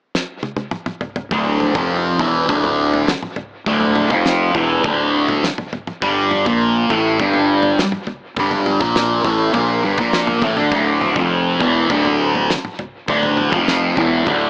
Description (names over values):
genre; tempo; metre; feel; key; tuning
psychedelic rock; 102 BPM; 4/4; straight; D minor; A4 = 441 Hz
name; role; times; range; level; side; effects
damped 70s drum kit; drums; 0.1-14.4 s; kick drum, snare drum, toms; -22 LUFS; equal; dub echo
thick fuzz guitar; riff; 1.3-14.5 s; D2 to D4; -15 LUFS; equal; distortion, phaser
fuzz fingered electric bass; bass; 1.3-14.5 s; D1 to D2; -22 LUFS; equal; overdrive
room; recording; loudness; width
moderate spring reverb, RT60 1.4 s, studio reverb; echo-heavy mix, AM radio sound; -14 LUFS; side -27 dB against mid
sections
0.0-1.3 A section; 1.3-14.5 B section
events
drum fill 0.1-1.3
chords
0.0 N.C.; 1.3 Dm; 6.0 G5; 10.7 Dm